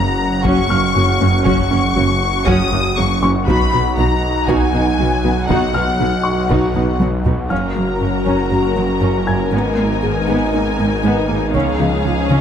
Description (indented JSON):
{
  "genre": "cinematic, hybrid orchestral and electronic film score",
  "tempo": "119 BPM",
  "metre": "4/4",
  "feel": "straight",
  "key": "unclear",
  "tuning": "A4 = 441 Hz",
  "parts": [
    { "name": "warm symphonic violin section", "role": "melody", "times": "0.0-7.0 s", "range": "F#5 to Eb6", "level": "-20 LUFS", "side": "left 5 dB", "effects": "none" },
    { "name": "dark symphonic viola section", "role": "accompaniment", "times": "0.0-12.4 s", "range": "F3 to Gb4", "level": "-22 LUFS", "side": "right 1 dB", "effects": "none" },
    { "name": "warm analog pad", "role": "sustained chords", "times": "0.0-12.4 s", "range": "F3 to Gb5", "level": "-21 LUFS", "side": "right 1 dB", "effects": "chorus" },
    { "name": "tight sequenced synth", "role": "arpeggios", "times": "0.0-12.4 s", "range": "Db3 to Ab4", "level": "-25 LUFS", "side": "left 2 dB", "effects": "none" },
    { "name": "rich symphonic double bass section", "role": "bass", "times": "0.0-7.3 s", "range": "Gb1 to B1", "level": "-22 LUFS", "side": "right 2 dB", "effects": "none" },
    { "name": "warm symphonic cello section", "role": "bass", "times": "0.0-12.4 s", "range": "Gb2 to Db3", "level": "-22 LUFS", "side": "right 2 dB", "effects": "none" },
    { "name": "wide detuned saw bass", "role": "bass", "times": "0.0-12.4 s", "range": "Gb1 to Db2", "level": "-22 LUFS", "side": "equal", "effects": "chorus" },
    { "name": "taiko ensemble", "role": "drums", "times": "0.5-8.5, 11.5-12.4 s", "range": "none", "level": "-23 LUFS", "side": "equal", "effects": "none" },
    { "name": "bright baby grand piano", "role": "texture", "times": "0.7-11.6 s", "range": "F5 to Ab6", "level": "-26 LUFS", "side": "left 3 dB", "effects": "digital delay" },
    { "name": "rich symphonic violin section", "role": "second line", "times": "7.5-12.4 s", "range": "Ab4 to Bb5", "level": "-24 LUFS", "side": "left 3 dB", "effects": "none" }
  ],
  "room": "moderate scoring stage reverb, RT60 1.6 s",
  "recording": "none",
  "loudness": "-14 LUFS",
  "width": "side -8 dB against mid",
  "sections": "0.0-7.5 A section; 7.5-12.4 B section",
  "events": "drum fill 6.8-7.5",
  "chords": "0.0 Gb; 3.5 B; 7.5 Gb; 9.5 Abmadd9; 11.5 Dbadd9",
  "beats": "0.45 0.95 | 1.46 1.96 2.47 2.97 | 3.48 3.98 4.49 4.99 | 5.49 6.00 6.50 7.01 | 7.51 8.01 8.52 9.02 | 9.53 10.03 10.54 11.04 | 11.54 12.05"
}